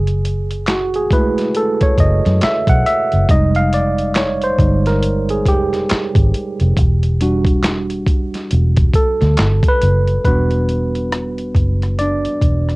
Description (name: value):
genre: R&B, neo-soul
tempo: 69 BPM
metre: 4/4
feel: swing 60% on 16ths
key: unclear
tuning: A4 = 440 Hz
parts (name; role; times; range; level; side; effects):
- tine electric piano; accompaniment; 0.0-12.8 s; G3 to F#5; -18 LUFS; right 1 dB; auto-pan, cassette tape
- vintage muted fingered electric bass; bass; 0.0-12.8 s; E1 to F#2; -16 LUFS; equal; none
- boom bap sampler-style drum kit; drums; 0.1-12.8 s; handclaps, hi-hat, kick drum, rim click, snare drum; -17 LUFS; equal; cassette tape
room: little or no reverb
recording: home recording on cassette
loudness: -13 LUFS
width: side -23 dB against mid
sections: 0.0-10.2 A section; 10.2-12.8 B section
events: tine electric piano solo 0.0-10.2, 10.2-12.8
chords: 0.0 F#m9; 3.3 Fm9; 6.8 Em9